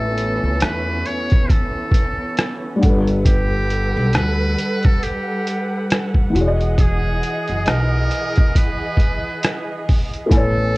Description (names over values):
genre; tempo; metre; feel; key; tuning
lo-fi hip hop; 68 BPM; 4/4; swing 59% on 16ths; unclear; A4 = 442 Hz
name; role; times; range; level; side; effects
trumpet with metal mute; melody; 0.0-10.8 s; G4 to C#5; -26 LUFS; equal; low-pass filter
felt-muted upright piano; accompaniment; 0.0-10.8 s; E3 to G#5; -24 LUFS; left 1 dB; cassette tape, low-pass filter
muted studio string section; sustained chords; 0.0-10.8 s; E3 to F#5; -26 LUFS; right 1 dB; low-pass filter
upright bass; bass; 0.0-10.8 s; E1 to E2; -21 LUFS; equal; transformer saturation
trip hop sampler-style drum kit; drums; 0.2-10.6 s; hi-hat, kick drum, rim click; -17 LUFS; equal; none
room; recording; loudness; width
light reverb; worn, warbling old tape, cassette tape, warbly pitch drift; -16 LUFS; side -22 dB against mid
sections
0.0-10.8 A section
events
none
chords
0.0 Amaj9; 2.8 Gmaj9; 6.3 Emaj9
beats
0.60 1.49 2.37 | 3.25 4.13 5.02 5.90 | 6.78 7.66 8.55 9.43 | 10.31